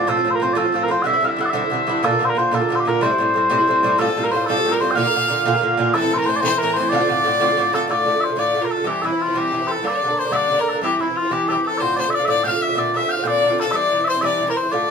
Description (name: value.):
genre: celtic folk, Celtic jig.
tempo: 123 BPM (dotted quarters).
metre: 6/8.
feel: straight.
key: D minor.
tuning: A4 = 439 Hz.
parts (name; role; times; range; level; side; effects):
mellow small bagpipes; melody; 0.0-14.9 s; E4 to G5; -19 LUFS; left 1 dB; none.
Irish bouzouki; accompaniment; 0.0-14.9 s; G2 to F4; -22 LUFS; right 4 dB; none.
clear fiddle; second line; 4.0-14.9 s; E4 to F5; -23 LUFS; left 6 dB; none.
room: moderate studio reverb, RT60 0.6 s.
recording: minimal, uncompressed stereo recording.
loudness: -16 LUFS.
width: side -6 dB against mid.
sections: 0.1-7.9 A section; 7.9-14.9 B section.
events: none.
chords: 0.1 F; 1.1 Cadd9; 2.0 Bb; 3.0 Am7; 4.0 Fadd9; 5.0 Bb; 5.9 Am; 6.9 Dm7; 7.9 Dm; 8.9 C; 9.8 Gm; 10.8 C; 11.8 Dm7; 12.8 Bbadd9; 13.7 C.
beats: | 0.08 0.57 | 1.06 1.55 | 2.04 2.52 | 3.01 3.50 | 3.99 4.48 | 4.97 5.46 | 5.94 6.43 | 6.92 7.41 | 7.89 8.38 | 8.87 9.36 | 9.85 10.33 | 10.82 11.31 | 11.80 12.28 | 12.77 13.26 | 13.74 14.23 | 14.71.